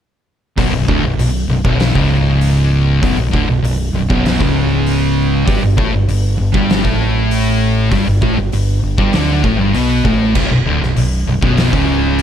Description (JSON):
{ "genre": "stoner and doom metal", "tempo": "98 BPM", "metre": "4/4", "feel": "straight", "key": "B minor", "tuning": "A4 = 440 Hz", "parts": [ { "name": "thick fuzz guitar", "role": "riff", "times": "0.6-12.2 s", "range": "B1 to D4", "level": "-18 LUFS", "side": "left 7 dB", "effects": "distortion" }, { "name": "thick fuzz guitar", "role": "riff", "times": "0.6-12.2 s", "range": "B1 to D4", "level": "-18 LUFS", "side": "right 6 dB", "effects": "distortion" }, { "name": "thick fuzz guitar", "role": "riff", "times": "0.6-12.2 s", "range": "B1 to D4", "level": "-20 LUFS", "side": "equal", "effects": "distortion" }, { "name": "overdriven fingered electric bass", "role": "bass", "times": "0.6-12.2 s", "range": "B0 to D2", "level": "-18 LUFS", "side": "equal", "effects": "none" }, { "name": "oversized low-tuned drum kit", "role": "drums", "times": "0.6-12.2 s", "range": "crash cymbal, hi-hat, kick drum, snare drum", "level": "-19 LUFS", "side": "equal", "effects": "none" } ], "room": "studio ambience", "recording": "none", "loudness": "-12 LUFS", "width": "side -9 dB against mid", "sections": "0.6-12.2 A section", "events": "none", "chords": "0.6 Bm; 5.5 G5; 10.4 Bm", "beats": "| 0.58 1.20 1.81 2.42 | 3.03 3.64 4.25 4.86 | 5.47 6.09 6.70 7.31 | 7.92 8.53 9.14 9.75 | 10.36 10.97 11.58 12.19" }